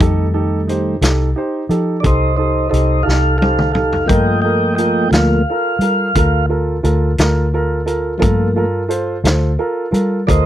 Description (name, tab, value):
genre	slow blues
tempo	58 BPM (dotted quarters)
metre	12/8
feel	straight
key	unclear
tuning	A4 = 441 Hz
part	warm upright piano	accompaniment	0.0-10.5 s	Eb4 to C5	-20 LUFS	right 3 dB	none
part	mellow tonewheel organ	sustained chords	0.0-10.5 s	Eb3 to G5	-17 LUFS	equal	slow rotary speaker
part	vintage muted fingered electric bass	bass	0.0-10.5 s	C2 to G3	-17 LUFS	left 1 dB	none
part	vintage drum kit	drums	0.0-10.4 s	hi-hat, kick drum, snare drum, toms	-17 LUFS	left 1 dB	none
room	little or no reverb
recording	dry, close 1970s-style studio recording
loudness	-13 LUFS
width	side -12 dB against mid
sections	0.0-10.5 A section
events	tonewheel organ solo 0.0-10.5; drum fill 3.1-4.1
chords	0.0 F9; 4.1 Gm7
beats	1.01 2.04 3.07 | 4.10 5.12 6.15 7.18 | 8.21 9.25 10.28